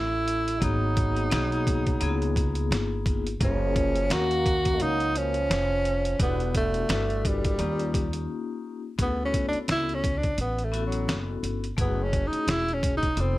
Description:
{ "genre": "hip hop, jazz-hop", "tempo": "86 BPM", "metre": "4/4", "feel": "swing 57% on 16ths", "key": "unclear", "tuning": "A4 = 441 Hz", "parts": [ { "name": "breathy tenor saxophone", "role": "melody", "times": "0.0-13.4 s", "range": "F#3 to F#4", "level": "-27 LUFS", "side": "equal", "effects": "none" }, { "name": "growling trombone", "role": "second line", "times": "0.0-8.3 s", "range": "Bb2 to A#3", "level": "-36 LUFS", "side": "right 9 dB", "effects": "none" }, { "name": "upright bass", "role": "bass", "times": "0.0-13.4 s", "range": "E1 to Eb2", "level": "-29 LUFS", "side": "equal", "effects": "none" }, { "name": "trip hop sampler-style drum kit", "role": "drums", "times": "0.3-13.4 s", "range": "hi-hat, kick drum, snare drum", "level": "-28 LUFS", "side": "equal", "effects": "none" }, { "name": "vibraphone with medium hard mallets", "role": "accompaniment", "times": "0.6-13.4 s", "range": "A3 to E#5", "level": "-32 LUFS", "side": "left 5 dB", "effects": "none" } ], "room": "light reverb", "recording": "none", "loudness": "-24 LUFS", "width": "side -17 dB against mid", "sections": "0.0-9.0 A section; 9.0-13.4 B section", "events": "break 8.3-9.0; tenor saxophone solo 9.0-13.4", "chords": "0.0 Dsus2 (rootless); 0.6 G#m7; 2.0 C#13; 3.4 F#maj9; 6.2 Em7; 7.6 Eb9; 9.0 Dmaj13; 11.8 F#m9" }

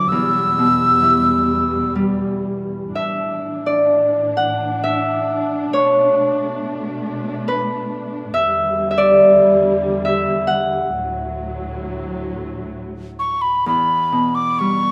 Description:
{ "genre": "celtic folk, Celtic slow air", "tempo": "61-71 BPM", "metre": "3/4", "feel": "rubato", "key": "E dorian", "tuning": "A4 = 440 Hz", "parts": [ { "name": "mellow mid whistle", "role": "melody", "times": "0.0-1.9, 13.2-14.9 s", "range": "B5 to E6", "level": "-18 LUFS", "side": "equal", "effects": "none" }, { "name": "Celtic harp", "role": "accompaniment", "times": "0.0-14.9 s", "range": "D2 to F#5", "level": "-20 LUFS", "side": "equal", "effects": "none" }, { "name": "dark symphonic string section", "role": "sustained chords", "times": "0.0-13.6 s", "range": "D2 to D4", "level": "-26 LUFS", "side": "equal", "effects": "none" } ], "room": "moderate recital hall reverb, RT60 1.7 s", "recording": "none", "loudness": "-18 LUFS", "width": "mono", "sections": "0.0-2.9 A section; 2.9-13.7 B section; 13.7-14.9 A section", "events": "harp solo 2.9-13.7", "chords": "0.1 Em; 2.9 Asus4; 5.7 Bm7; 8.3 Em7; 10.9 D; 13.7 Em" }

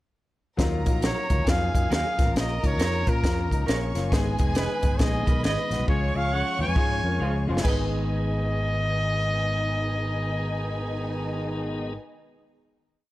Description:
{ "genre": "uptempo 1960s-style soul", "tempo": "136 BPM", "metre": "4/4", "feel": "swing 62% on 8ths", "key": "G# dorian", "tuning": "A4 = 440 Hz", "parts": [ { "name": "rich studio violin section", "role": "second line", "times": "0.6-11.9 s", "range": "D#4 to C#6", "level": "-35 LUFS", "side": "right 1 dB", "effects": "slapback echo" }, { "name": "warm concert grand piano", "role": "accompaniment", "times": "0.6-12.0 s", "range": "E#3 to B4", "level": "-32 LUFS", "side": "left 4 dB", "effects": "none" }, { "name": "fingered electric bass", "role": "bass", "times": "0.6-12.0 s", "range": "E#1 to A#2", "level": "-28 LUFS", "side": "equal", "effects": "none" }, { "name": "compact cocktail drum kit", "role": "drums", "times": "0.6-7.8 s", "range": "crash cymbal, hi-hat, kick drum, snare drum", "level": "-25 LUFS", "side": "equal", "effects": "none" }, { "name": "semi-hollow electric guitar", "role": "stabs", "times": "1.0-12.0 s", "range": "F#4 to E#5", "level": "-36 LUFS", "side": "right 6 dB", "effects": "tremolo" }, { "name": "clear trumpet", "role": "melody", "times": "1.1-11.9 s", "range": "A#4 to G#5", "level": "-30 LUFS", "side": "equal", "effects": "none" }, { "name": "tonewheel organ", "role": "sustained chords", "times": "4.1-11.9 s", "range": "D#3 to G#4", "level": "-36 LUFS", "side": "right 1 dB", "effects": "chorus vibrato, slow rotary speaker" }, { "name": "mellow horn section", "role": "second line", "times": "7.2-11.9 s", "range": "B2 to E#4", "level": "-36 LUFS", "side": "left 2 dB", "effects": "none" } ], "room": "light reverb", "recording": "dark, warm production", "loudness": "-23 LUFS", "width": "side -16 dB against mid", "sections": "0.6-7.6 pre-chorus; 7.6-11.2 final chord", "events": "drum fill 5.9-7.6; band accent 5.9-7.6", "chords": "0.6 D#madd9; 2.1 A#m; 4.1 G#m; 5.9 C#; 7.6 G#m" }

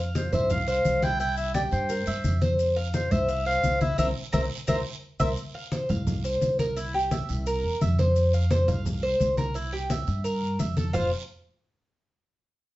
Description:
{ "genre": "latin, Cuban son and guajira", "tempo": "172 BPM", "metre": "4/4", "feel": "straight", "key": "unclear", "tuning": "A4 = 440 Hz", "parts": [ { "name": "Cuban tres", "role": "arpeggios", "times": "0.0-11.1 s", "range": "E4 to F5", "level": "-28 LUFS", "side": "equal", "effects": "none" }, { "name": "upright bass", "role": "bass", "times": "0.0-11.1 s", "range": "F1 to G2", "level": "-28 LUFS", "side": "equal", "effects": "none" }, { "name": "guiro", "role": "percussion", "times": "0.1-11.0 s", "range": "none", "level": "-43 LUFS", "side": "right 5 dB", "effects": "none" }, { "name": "clear clarinet", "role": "melody", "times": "0.2-5.3 s", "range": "C5 to G5", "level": "-29 LUFS", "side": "left 1 dB", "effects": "none" }, { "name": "congas", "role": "percussion", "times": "0.2-11.0 s", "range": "none", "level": "-29 LUFS", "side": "left 1 dB", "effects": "none" }, { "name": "maracas", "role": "percussion", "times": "0.2-11.0 s", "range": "none", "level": "-46 LUFS", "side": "left 5 dB", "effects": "none" } ], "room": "wet studio reverb, RT60 0.6 s", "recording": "heard from further back in the room, nothing above 7.7 kHz", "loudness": "-23 LUFS", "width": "side -17 dB against mid", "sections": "0.0-5.4 A section; 5.4-10.9 B section; 10.9-12.3 C section", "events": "band accent 4.0-5.4", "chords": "0.0 F5; 1.2 C; 2.6 F5; 4.0 C7; 5.4 F5; 6.8 C7; 8.2 F5; 9.6 C7; 10.9 F5" }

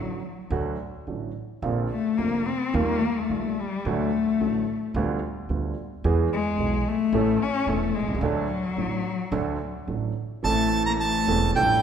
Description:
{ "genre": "tango", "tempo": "109 BPM", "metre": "4/4", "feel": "rubato", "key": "unclear", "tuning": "A4 = 440 Hz", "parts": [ { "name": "warm cello", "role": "second line", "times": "0.0-11.8 s", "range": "F#3 to C#4", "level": "-26 LUFS", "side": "left 5 dB", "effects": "none" }, { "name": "warm grand piano", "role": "accompaniment", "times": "0.0-11.8 s", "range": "E1 to A4", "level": "-28 LUFS", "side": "right 4 dB", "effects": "none" }, { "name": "upright bass", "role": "bass", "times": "0.0-11.8 s", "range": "E1 to E2", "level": "-30 LUFS", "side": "right 1 dB", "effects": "none" }, { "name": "bandoneon", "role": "melody", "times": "10.4-11.8 s", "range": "G5 to Bb5", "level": "-22 LUFS", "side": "right 3 dB", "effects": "none" } ], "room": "wet scoring stage reverb, RT60 1.7 s", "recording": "recorded in a church or concert hall", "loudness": "-23 LUFS", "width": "side -8 dB against mid", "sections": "0.0-10.4 A section; 10.4-11.8 A section", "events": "cello solo 0.0-10.4", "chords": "0.0 D; 1.6 Bbadd9; 2.7 Ebadd9; 3.8 D; 4.9 G7/D; 6.0 E; 7.1 A; 8.2 D; 10.4 Am" }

